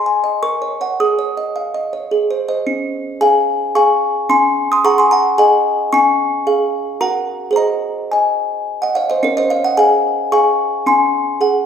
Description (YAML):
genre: classical, lullaby for music box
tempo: 110 BPM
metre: 3/4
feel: straight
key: Db major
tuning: A4 = 441 Hz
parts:
  - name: music box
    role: solo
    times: 0.0-11.7 s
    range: Db4 to Eb6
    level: -13 LUFS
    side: equal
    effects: none
room: moderate scoring stage reverb, RT60 1.6 s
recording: recorded in a church or concert hall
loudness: -13 LUFS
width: side -8 dB against mid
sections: 0.0-2.7 A section; 2.7-11.7 B section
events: none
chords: 0.4 Gb/Bb; 1.0 Absus4; 2.1 Ab; 2.7 Db; 4.3 Ab7/Db; 5.9 Db; 7.0 Gb; 7.6 Ab; 9.2 Db; 10.9 Ab7/Db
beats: 0.42 | 0.98 1.55 2.11 | 2.67 3.21 3.76 | 4.30 4.84 5.38 | 5.93 6.47 7.01 | 7.57 8.13 8.68 | 9.24 9.79 10.33 | 10.87 11.41